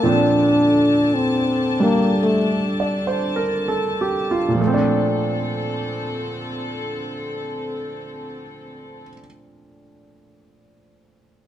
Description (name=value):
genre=jazz ballad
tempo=47-58 BPM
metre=4/4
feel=swing 66% on 8ths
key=Bb major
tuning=A4 = 436 Hz
part: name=dark trombone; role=melody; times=0.0-2.7 s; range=A3 to D4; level=-17 LUFS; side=left 1 dB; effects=none
part: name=warm grand piano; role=accompaniment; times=0.0-11.5 s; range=Bb2 to D5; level=-21 LUFS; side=right 2 dB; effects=none
part: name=warm studio string section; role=sustained chords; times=0.0-9.1 s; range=D3 to A5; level=-27 LUFS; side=left 1 dB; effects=none
room=moderate large studio reverb, RT60 1.2 s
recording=none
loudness=-18 LUFS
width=side -11 dB against mid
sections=0.0-4.6 A section; 4.6-9.6 B section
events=slowing down 0.0-4.6; trombone solo 0.0-4.6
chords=0.0 Bbmaj9